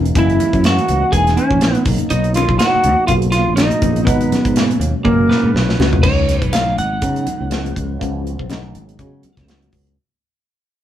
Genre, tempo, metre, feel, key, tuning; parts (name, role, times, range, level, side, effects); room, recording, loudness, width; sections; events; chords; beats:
electric jazz fusion; 122 BPM; 4/4; swing 56% on 16ths; A4 = 439 Hz
tine electric piano; accompaniment; 0.0-9.9 s; A#2 to F#4; -22 LUFS; equal; fast stereo tremolo, phaser
fingered electric bass; bass; 0.0-10.0 s; E1 to C#3; -19 LUFS; equal
modern studio drum kit; drums; 0.1-10.0 s; crash cymbal, hi-hat, kick drum, snare drum, toms; -20 LUFS; left 1 dB
lightly driven lead guitar; melody; 0.2-9.4 s; A#3 to F#5; -18 LUFS; right 2 dB
mellow jazz flute; second line; 0.2-5.5 s; A#4 to G#5; -20 LUFS; left 1 dB
congas; percussion; 0.2-9.8 s; -26 LUFS; left 3 dB
moderate studio reverb, RT60 0.6 s; band playing live in one room; -13 LUFS; side -11 dB against mid
0.0-6.0 A section; 6.0-10.0 B section
drum fill 5.0-6.0; fade-out 6.0-10.0
0.0 F#13; 1.9 Bmaj7; 4.1 G#m9; 6.0 C#7sus4
| 0.16 0.65 1.13 1.62 | 2.11 2.60 3.09 3.58 | 4.07 4.56 5.05 5.54 | 6.03 6.52 7.01 7.50 | 8.00 8.49 8.98 9.47